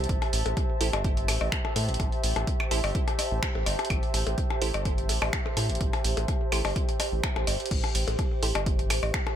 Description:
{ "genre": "minimal techno", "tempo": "126 BPM", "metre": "4/4", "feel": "swing 53% on 16ths", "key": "A minor", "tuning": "A4 = 440 Hz", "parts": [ { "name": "round analog bass", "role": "bass", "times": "0.0-9.1 s", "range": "G1 to A2", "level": "-30 LUFS", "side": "equal", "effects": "sidechain pumping" }, { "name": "punchy analog drum machine", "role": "drums", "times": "0.0-9.2 s", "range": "crash cymbal, finger snaps, hi-hat", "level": "-32 LUFS", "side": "right 2 dB", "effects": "none" }, { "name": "warbly tape-like pad", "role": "texture", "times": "0.0-9.4 s", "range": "G4 to A5", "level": "-33 LUFS", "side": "right 1 dB", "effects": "chorus, built-in reverb, sidechain pumping" }, { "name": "electronic kick drum", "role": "drums", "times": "0.1-9.2 s", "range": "none", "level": "-29 LUFS", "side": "equal", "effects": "none" }, { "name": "percussion blips", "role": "percussion", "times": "0.2-9.4 s", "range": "none", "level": "-33 LUFS", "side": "left 5 dB", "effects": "digital delay" }, { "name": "wavetable chord stab", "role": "stabs", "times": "0.8-8.5 s", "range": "E4 to C5", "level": "-35 LUFS", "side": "right 3 dB", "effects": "digital delay" } ], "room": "little or no reverb", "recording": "none", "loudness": "-25 LUFS", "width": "side -10 dB against mid", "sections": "0.0-9.4 A section", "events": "none", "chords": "0.0 Am7" }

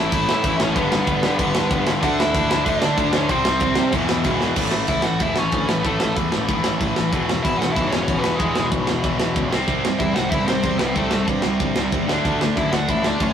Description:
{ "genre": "punk rock", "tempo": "188 BPM", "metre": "4/4", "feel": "straight", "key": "unclear", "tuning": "A4 = 440 Hz", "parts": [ { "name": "nasal lead guitar with a parked wah", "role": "melody", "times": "0.0-13.3 s", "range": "G#3 to F#5", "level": "-24 LUFS", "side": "equal", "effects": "overdrive" }, { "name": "distorted electric guitar", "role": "riff", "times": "0.0-13.3 s", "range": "E2 to D4", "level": "-27 LUFS", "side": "left 5 dB", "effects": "distortion" }, { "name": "tight distorted guitar", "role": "riff", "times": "0.0-13.3 s", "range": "E2 to D4", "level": "-24 LUFS", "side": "equal", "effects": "distortion" }, { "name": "fuzz picked electric bass", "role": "bass", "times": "0.0-13.3 s", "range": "E1 to D3", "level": "-26 LUFS", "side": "equal", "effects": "overdrive" }, { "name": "tight metal drum kit", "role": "drums", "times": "0.1-13.3 s", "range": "crash cymbal, kick drum, snare drum", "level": "-23 LUFS", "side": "right 1 dB", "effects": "none" }, { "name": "raw garage guitar", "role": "riff", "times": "2.0-4.6, 9.7-13.3 s", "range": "E2 to D4", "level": "-27 LUFS", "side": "right 6 dB", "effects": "overdrive" } ], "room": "light reverb", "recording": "rough rehearsal-room recording, warm saturation", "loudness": "-18 LUFS", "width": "side -8 dB against mid", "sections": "0.0-4.6 A section; 4.6-13.3 B section", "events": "drum fill 4.4", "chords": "0.0 A; 0.7 G; 2.0 D; 3.3 C5; 3.9 E5; 4.6 A; 7.1 E; 9.5 C; 12.1 D" }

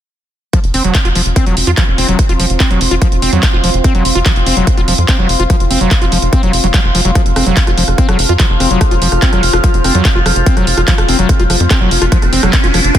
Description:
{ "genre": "psychedelic trance", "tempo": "145 BPM", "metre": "4/4", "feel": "straight", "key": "unclear", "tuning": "A4 = 442 Hz", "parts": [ { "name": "screaming distorted acid line", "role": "riff", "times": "0.5-13.0 s", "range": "F3 to F4", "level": "-17 LUFS", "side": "moving between left 3 dB and right 3 dB", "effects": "distortion, chorus, auto-pan, sidechain pumping, dub echo" }, { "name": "electronic kick drum", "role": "drums", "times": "0.5-13.0 s", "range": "none", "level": "-12 LUFS", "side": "equal", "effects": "none" }, { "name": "techno drum kit", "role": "drums", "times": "0.5-13.0 s", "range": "handclaps, hi-hat, rim click", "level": "-16 LUFS", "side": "equal", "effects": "none" }, { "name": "warbly tape-like pad", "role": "texture", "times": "0.9-13.0 s", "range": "C4 to F6", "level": "-21 LUFS", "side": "equal", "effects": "chorus, built-in reverb, sidechain pumping" }, { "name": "tight sequencer bass", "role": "bass", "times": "0.6-12.9 s", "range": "F1 to F2", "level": "-14 LUFS", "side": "equal", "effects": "none" }, { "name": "overtone-sweeping drone", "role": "sustained chords", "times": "7.9-13.0 s", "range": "F3 to F4", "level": "-19 LUFS", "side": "left 2 dB", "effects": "chorus, built-in reverb, phaser, sidechain pumping" }, { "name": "riser", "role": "sound effects", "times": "11.4-13.0 s", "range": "none", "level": "-20 LUFS", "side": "equal", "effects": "none" } ], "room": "digital ambience", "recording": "dense, heavily limited modern master", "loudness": "-9 LUFS", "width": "side -11 dB against mid", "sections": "0.5-13.0 A section", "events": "riser 11.4-13.0", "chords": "0.5 F5" }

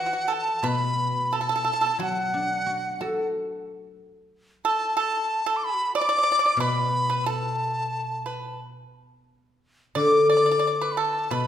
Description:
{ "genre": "chinese traditional, Chinese chamber ensemble", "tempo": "89 BPM", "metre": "4/4", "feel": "rubato", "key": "D gong mode", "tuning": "A4 = 441 Hz", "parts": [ { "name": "dizi", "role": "melody", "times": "0.0-11.5 s", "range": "F#5 to D6", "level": "-25 LUFS", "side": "left 1 dB", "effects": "none" }, { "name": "pipa", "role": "second line", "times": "0.0-11.5 s", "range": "F#4 to D5", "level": "-28 LUFS", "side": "right 5 dB", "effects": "none" }, { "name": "guzheng", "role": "accompaniment", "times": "0.0-11.5 s", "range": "B2 to A4", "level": "-26 LUFS", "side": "left 1 dB", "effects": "none" } ], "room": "wet recital hall reverb, RT60 1.6 s", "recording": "recorded in a church or concert hall", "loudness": "-22 LUFS", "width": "side -10 dB against mid", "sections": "0.0-11.5 A section", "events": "none", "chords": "none" }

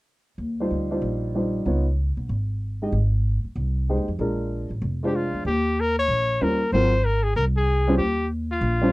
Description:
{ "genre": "jazz, small-group swing and bop", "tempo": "189 BPM", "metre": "4/4", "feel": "swing 63% on 8ths", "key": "Eb major, Eb mixolydian from 5.5 s", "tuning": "A4 = 435 Hz", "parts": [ { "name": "upright bass", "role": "bass", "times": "0.4-8.9 s", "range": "F1 to F2", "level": "-24 LUFS", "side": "equal", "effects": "none" }, { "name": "warm baby grand piano", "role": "accompaniment", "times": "0.6-8.9 s", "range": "Gb3 to Eb5", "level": "-24 LUFS", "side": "equal", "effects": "none" }, { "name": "clear trumpet", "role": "melody", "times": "5.1-8.9 s", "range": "F4 to Db5", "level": "-23 LUFS", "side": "left 2 dB", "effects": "none" } ], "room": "little or no reverb", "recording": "dry, close 1970s-style studio recording", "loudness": "-21 LUFS", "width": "side -20 dB against mid", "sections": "0.4-5.5 A section; 5.5-8.9 B section", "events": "none", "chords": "0.4 Eb69; 1.7 Db9; 2.9 Abmaj7; 4.2 Bb7; 5.5 Eb13; 6.7 Ab13; 8.0 Ebadd9" }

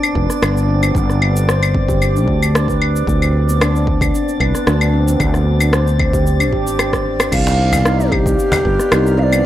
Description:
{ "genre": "organic downtempo", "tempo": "113 BPM", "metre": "4/4", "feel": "straight", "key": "unclear", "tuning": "A4 = 440 Hz", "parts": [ { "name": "deep house drum kit", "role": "drums", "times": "0.0-9.4 s", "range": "cabasa, claves, crash cymbal, rim click", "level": "-19 LUFS", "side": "left 1 dB", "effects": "none" }, { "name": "drifting glass-harmonics texture", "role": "texture", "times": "0.0-9.5 s", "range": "D5 to F5", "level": "-27 LUFS", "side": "right 3 dB", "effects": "chorus, built-in reverb" }, { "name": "handpan", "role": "arpeggios", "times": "0.2-9.4 s", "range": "B3 to C5", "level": "-20 LUFS", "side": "left 1 dB", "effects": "tape echo" }, { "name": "sustaining fretless electric bass", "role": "bass", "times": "0.2-9.4 s", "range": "F1 to D2", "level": "-16 LUFS", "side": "equal", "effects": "none" }, { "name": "electronic kick drum", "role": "drums", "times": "0.2-8.8 s", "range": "none", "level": "-21 LUFS", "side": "equal", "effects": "none" }, { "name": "mellow hollow Native American-style cedar flute", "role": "melody", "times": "7.3-9.5 s", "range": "G4 to F5", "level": "-18 LUFS", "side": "right 1 dB", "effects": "none" }, { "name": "warm analog pad", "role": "sustained chords", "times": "7.3-9.5 s", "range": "Eb4 to D5", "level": "-27 LUFS", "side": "right 1 dB", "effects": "none" }, { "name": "cajon", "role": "percussion", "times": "7.5-8.6 s", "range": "none", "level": "-21 LUFS", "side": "left 1 dB", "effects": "none" } ], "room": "light reverb, digital ambience", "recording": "dry, gritty hardware recording, transformer saturation", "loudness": "-13 LUFS", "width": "side -13 dB against mid", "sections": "0.0-9.5 A section", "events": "drum fill 6.8-7.3", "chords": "0.0 Gsus4; 3.1 Ab(#11); 7.3 Cmadd9" }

